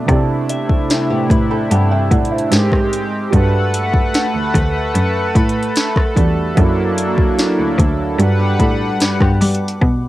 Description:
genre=contemporary R&B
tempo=74 BPM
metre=4/4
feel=straight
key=G major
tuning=A4 = 440 Hz
part: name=dark grand piano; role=accompaniment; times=0.0-9.8 s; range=C3 to B5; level=-23 LUFS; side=right 6 dB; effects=cassette tape
part: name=chorused pulse-width pad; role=sustained chords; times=0.0-9.8 s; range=C3 to F#5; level=-19 LUFS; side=equal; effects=cassette tape
part: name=clear cello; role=bass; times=0.0-10.1 s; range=D2 to G3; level=-17 LUFS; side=equal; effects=none
part: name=smooth R&B drum kit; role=drums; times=0.1-10.0 s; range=hi-hat, kick drum, rim click, snare drum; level=-16 LUFS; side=equal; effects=overdrive, cassette tape
part: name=soft synth bell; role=texture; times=0.5-10.1 s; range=E5 to D6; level=-32 LUFS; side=left 1 dB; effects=chorus, phaser, cassette tape, analog delay
part: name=flamenco guitar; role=arpeggios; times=0.9-2.5, 8.4-9.8 s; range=G3 to B4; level=-25 LUFS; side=left 7 dB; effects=cassette tape, analog delay
room=light reverb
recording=home recording on cassette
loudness=-13 LUFS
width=side -16 dB against mid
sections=0.0-9.8 A section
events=none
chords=0.1 C69; 2.5 Abmaj9; 3.3 Gmaj9; 6.6 F#7alt; 8.2 Gmaj7

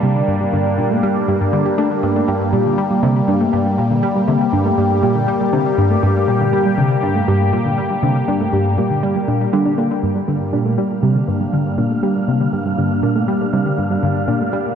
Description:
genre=ambient, sequencer-driven space music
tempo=120 BPM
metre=4/4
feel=straight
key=G minor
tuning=A4 = 440 Hz
part: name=phased analog pad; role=sustained chords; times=0.0-14.8 s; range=G3 to G4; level=-19 LUFS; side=left 1 dB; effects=phaser, chorus
part: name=soft round pluck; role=arpeggios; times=0.0-14.6 s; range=G2 to G4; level=-21 LUFS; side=right 1 dB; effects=chorus, auto-pan, ping-pong delay
part: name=tight sequenced synth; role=riff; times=0.0-14.7 s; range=G2 to D4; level=-19 LUFS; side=equal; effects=chorus, ping-pong delay
part: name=wind-like tuned noise texture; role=texture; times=11.1-14.8 s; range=F5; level=-28 LUFS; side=right 4 dB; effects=built-in reverb
room=wet huge ambient reverb, RT60 8.1 s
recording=dark, warm production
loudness=-14 LUFS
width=side -8 dB against mid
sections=0.0-10.0 A section; 10.0-14.8 B section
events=none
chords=0.0 Gm

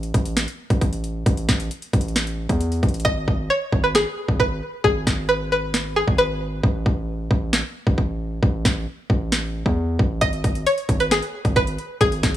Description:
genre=hip hop, trap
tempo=134 BPM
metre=4/4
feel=half-time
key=unclear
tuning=A4 = 441 Hz
part: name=hard-hitting 808-style bass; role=bass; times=0.0-12.4 s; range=G#1 to E2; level=-25 LUFS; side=equal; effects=none
part: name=trap drum kit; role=drums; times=0.0-12.4 s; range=hi-hat, kick drum, snare drum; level=-20 LUFS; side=equal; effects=overdrive
part: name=string-like resonator pluck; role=melody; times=3.0-6.6, 10.2-12.4 s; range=G#4 to D#5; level=-21 LUFS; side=equal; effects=chorus, low-pass filter, tape echo
room=little or no reverb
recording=small room ambience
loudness=-19 LUFS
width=side -12 dB against mid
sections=0.0-12.4 A section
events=break 0.0-3.1; hi-hats muted 3.1-10.2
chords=0.0 A5; 3.1 G#m; 6.6 A5; 10.2 N.C.

